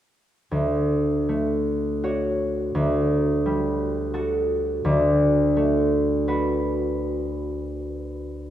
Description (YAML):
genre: classical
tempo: 74-88 BPM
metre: 3/4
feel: rubato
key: D major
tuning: A4 = 440 Hz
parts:
  - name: concert harp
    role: accompaniment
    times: 0.5-8.5 s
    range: D2 to C#5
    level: -21 LUFS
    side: equal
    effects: none
room: moderate scoring stage reverb, RT60 1.8 s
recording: none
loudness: -21 LUFS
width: side -11 dB against mid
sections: 0.5-8.5 A section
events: none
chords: 0.5 Dmaj7; 2.7 Dadd11; 4.8 D6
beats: | 0.52 1.29 2.03 | 2.75 3.44 4.13 | 4.83 5.54 6.25 | 6.98 7.72 8.50